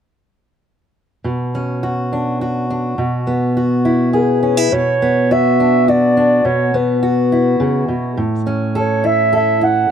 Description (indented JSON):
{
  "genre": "folk",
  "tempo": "104 BPM",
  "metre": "3/4",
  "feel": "straight",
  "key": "B dorian",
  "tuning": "A4 = 440 Hz",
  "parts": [
    { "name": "fingerpicked steel-string acoustic guitar", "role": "accompaniment", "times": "1.2-9.9 s", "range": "A2 to A4", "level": "-15 LUFS", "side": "equal", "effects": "none" },
    { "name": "dark clarinet", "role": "melody", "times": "4.1-9.9 s", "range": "B4 to F#5", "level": "-15 LUFS", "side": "equal", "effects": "slapback echo" }
  ],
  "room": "light reverb",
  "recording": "recorded outdoors, with no room sound",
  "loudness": "-13 LUFS",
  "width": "side -8 dB against mid",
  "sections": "1.2-4.7 A section; 4.7-9.9 B section",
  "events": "none",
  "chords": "1.2 Bmadd9; 3.0 Esus2/B; 4.7 Bmadd9; 6.4 Esus2/B; 8.2 A",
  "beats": "| 1.25 1.83 2.41 | 2.98 3.56 4.14 | 4.72 5.29 5.87 | 6.45 7.02 7.60 | 8.17 8.75 9.32 | 9.90"
}